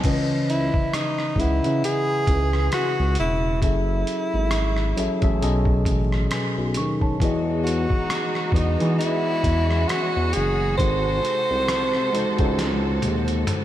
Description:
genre	R&B, neo-soul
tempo	67 BPM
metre	4/4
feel	swing 56% on 16ths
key	C# minor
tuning	A4 = 439 Hz
part	tine electric piano	accompaniment	0.0-13.6 s	B2 to C#6	-26 LUFS	left 2 dB	phaser
part	smooth synth bass	bass	0.0-13.4 s	E1 to E3	-24 LUFS	equal	none
part	boom bap sampler-style drum kit	drums	0.0-13.6 s	crash cymbal, hi-hat, kick drum, rim click, snare drum, toms	-26 LUFS	equal	none
part	breathy tenor saxophone	melody	0.5-13.4 s	D#4 to B#4	-25 LUFS	right 1 dB	ping-pong delay
part	rich studio string section	sustained chords	7.2-13.6 s	B#2 to A4	-31 LUFS	equal	none
room	moderate lush hall reverb, RT60 3.1 s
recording	dreamy mix soaked in reverb, vinyl crackle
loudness	-20 LUFS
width	side -12 dB against mid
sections	0.0-13.6 A section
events	drum fill 12.6-13.6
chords	0.0 C#m7; 3.6 F#m7; 5.4 B13; 7.2 Emaj9; 10.8 G#7b9

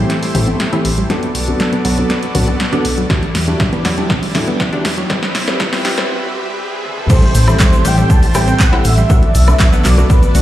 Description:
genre	progressive house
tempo	120 BPM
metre	4/4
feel	straight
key	A dorian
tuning	A4 = 440 Hz
part	supersaw pad	sustained chords	0.0-10.4 s	G3 to E5	-23 LUFS	right 1 dB	sidechain pumping
part	analog pluck	arpeggios	0.0-10.4 s	F#3 to G4	-22 LUFS	right 1 dB	chorus, sidechain pumping, dub echo
part	felt-muted upright piano	stabs	0.0-10.4 s	E3 to D5	-21 LUFS	left 2 dB	sidechain pumping, low-pass filter, dub echo
part	dark detuned saw bass	bass	0.0-10.4 s	A1 to E2	-15 LUFS	equal	tube saturation, sidechain pumping
part	riser and impact	sound effects	2.3-9.1 s	none	-25 LUFS	right 1 dB	none
part	deep house drum kit	drums	0.1-10.4 s	crash cymbal, handclaps, hi-hat, snare drum, toms, woodblock	-20 LUFS	equal	none
part	electronic toms and congas	percussion	0.3-5.8 s	none	-23 LUFS	left 1 dB	sidechain pumping on perc, sidechain pumping on toms
part	electronic kick drum	drums	3.1-10.2 s	none	-13 LUFS	equal	overdrive
part	expressive synth lead	melody	7.1-10.4 s	B4 to A5	-20 LUFS	equal	ensemble chorus, sidechain pumping, dub echo
part	egg shaker	percussion	7.1-10.4 s	none	-30 LUFS	left 2 dB	none
room	light reverb, digital ambience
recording	played on a big sound system in a bare room, stone room reverb, high-pass filter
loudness	-11 LUFS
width	side -13 dB against mid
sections	0.0-7.1 A section; 7.1-10.4 B section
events	build-up 0.0-7.1; drum fill 0.0-6.1, 6.8; filter sweep on synth arpeggio sound 0.0-7.1; filter sweep on felt piano 0.0-7.1; filter sweep 0.0-7.1; break 6.1-7.1; drop 7.1-10.4; impact 7.1-9.1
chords	0.0 Am7; 1.1 Bm7; 3.1 Em9; 5.1 Cmaj7; 7.1 Am7; 9.1 Bm7

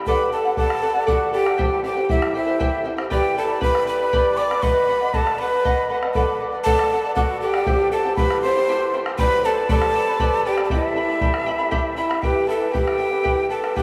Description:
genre	andean folk, Andean ensemble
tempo	79 BPM (dotted quarters)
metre	6/8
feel	straight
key	E minor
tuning	A4 = 440 Hz
part	charango	accompaniment	0.0-13.8 s	E4 to B5	-27 LUFS	equal	none
part	breathy quena	melody	0.1-13.8 s	E5 to D6	-26 LUFS	equal	none
part	breathy bright large pan pipes	second line	0.1-13.8 s	E4 to D5	-25 LUFS	equal	none
part	bombo	percussion	0.1-13.8 s	none	-28 LUFS	equal	none
room	wet huge ambient reverb, RT60 8.1 s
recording	in a vast, echoing space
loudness	-20 LUFS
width	mono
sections	0.1-12.2 A section; 12.2-13.8 B section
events	none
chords	0.1 D; 1.6 C; 3.1 G; 4.6 B; 6.1 D; 7.7 C; 9.2 G; 10.7 Em

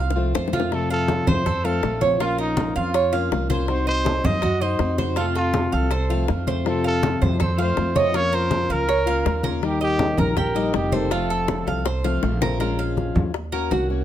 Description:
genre	latin, Cuban son and guajira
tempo	162 BPM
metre	4/4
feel	straight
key	unclear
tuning	A4 = 440 Hz
part	breathy trumpet	melody	0.0-12.2 s	Eb4 to Eb5	-25 LUFS	right 1 dB	plate reverb
part	Cuban tres	arpeggios	0.0-14.0 s	F4 to F5	-26 LUFS	right 5 dB	none
part	upright bass	bass	0.0-14.0 s	F1 to Gb2	-25 LUFS	right 1 dB	none
part	bongos	percussion	0.1-14.0 s	none	-29 LUFS	left 8 dB	none
part	fingerpicked plugged-in steel-string acoustic guitar	accompaniment	0.2-14.0 s	C3 to G4	-26 LUFS	left 5 dB	none
part	congas	percussion	0.2-14.0 s	none	-25 LUFS	left 1 dB	none
room	moderate studio reverb, RT60 0.7 s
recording	none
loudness	-19 LUFS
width	side -11 dB against mid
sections	0.7-12.6 A section; 12.6-14.0 B section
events	drum fill 0.0-0.7, 11.5-12.6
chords	0.0 F; 2.2 Bbm; 3.7 Cdim; 5.2 F; 8.1 Bbm; 9.6 Eb; 11.1 F; 12.6 Bbm7; 13.3 Ebm7

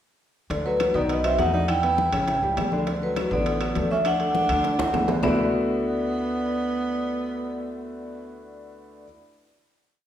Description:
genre	Afro-Cuban jazz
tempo	204 BPM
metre	4/4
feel	straight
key	D major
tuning	A4 = 440 Hz
part	warm grand piano	accompaniment	0.5-9.0 s	C#3 to D5	-29 LUFS	left 1 dB	none
part	upright bass	bass	0.5-9.0 s	A1 to E2	-32 LUFS	equal	none
part	bongos	percussion	0.5-5.3 s	none	-35 LUFS	left 5 dB	none
part	congas	percussion	0.5-5.3 s	none	-32 LUFS	left 2 dB	none
part	timbales	percussion	0.5-5.3 s	none	-32 LUFS	right 3 dB	none
part	vibraphone with medium hard mallets	melody	0.7-9.0 s	B4 to G5	-26 LUFS	equal	none
part	breathy tenor saxophone	second line	0.7-8.3 s	F#3 to E4	-30 LUFS	right 3 dB	none
part	claves	percussion	0.8-5.3 s	none	-42 LUFS	left 5 dB	none
room	wet recital hall reverb, RT60 1.3 s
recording	recorded in a church or concert hall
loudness	-21 LUFS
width	side -10 dB against mid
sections	0.5-5.2 A section; 5.2-7.6 final chord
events	drum fill 4.6-5.2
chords	0.5 D6; 1.1 B7; 1.7 Em7; 2.3 A7; 2.9 D6; 5.2 D69

